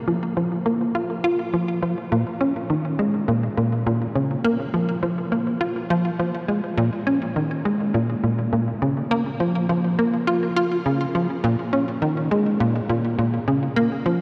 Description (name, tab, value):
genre	ambient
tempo	103 BPM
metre	4/4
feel	straight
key	unclear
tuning	A4 = 442 Hz
part	tight sequencer bass	solo	0.1-14.2 s	Bb2 to F4	-22 LUFS	equal	analog chorus, delay
room	wet huge ambient reverb, RT60 7.2 s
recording	dreamy mix soaked in reverb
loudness	-22 LUFS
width	mono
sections	0.0-14.2 A section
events	none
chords	none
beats	0.37 0.95 1.53 | 2.12 2.70 3.28 3.86 | 4.45 5.03 5.61 6.19 | 6.78 7.36 7.94 8.52 | 9.11 9.69 10.27 10.85 | 11.44 12.02 12.60 13.18 | 13.77